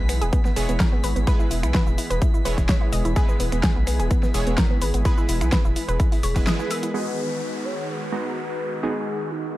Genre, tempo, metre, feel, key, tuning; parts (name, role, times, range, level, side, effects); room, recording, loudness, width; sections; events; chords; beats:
progressive house; 127 BPM; 4/4; straight; A4 = 441 Hz
lush unison pad; sustained chords; 0.0-9.6 s; D#3 to G#4; -32 LUFS; equal; chorus, sidechain pumping
analog pluck; arpeggios; 0.0-6.9 s; B3 to E5; -29 LUFS; equal; chorus, cassette tape, sidechain pumping, digital delay
supersaw stab; stabs; 0.0-9.6 s; G#3 to A#5; -30 LUFS; right 3 dB; sidechain pumping, low-pass filter, digital delay
round analog bass; bass; 0.0-6.5 s; E1 to B1; -24 LUFS; equal; sidechain pumping
drifting glass-harmonics texture; texture; 0.0-7.0 s; B6; -41 LUFS; left 1 dB; chorus, built-in reverb, sidechain pumping
big-room dance drum kit; drums; 0.1-9.6 s; crash cymbal, finger snaps, hi-hat, shaker, snare drum; -28 LUFS; equal; overdrive, low-pass filter on snare, studio reverb, low-pass filter on hats, low-pass filter on perc, low-pass filter on cymbals
electronic kick drum; drums; 0.3-6.4 s; -20 LUFS; equal; overdrive, studio reverb
warm velvety synth lead; melody; 6.2-9.6 s; D#4 to C#5; -30 LUFS; left 2 dB; chorus, sidechain pumping, digital delay
downlifter; sound effects; 6.9-9.6 s; -34 LUFS; equal
digital ambience; dark, warm production; -20 LUFS; side -16 dB against mid
0.0-6.9 A section; 6.9-9.6 B section
break 6.5-6.9; band accent 6.5
0.0 E; 6.9 G#m7
0.33 0.80 | 1.27 1.74 2.22 2.69 | 3.16 3.63 4.11 4.58 | 5.05 5.52 6.00 6.47 | 6.94 7.41 7.89 8.36 | 8.83 9.30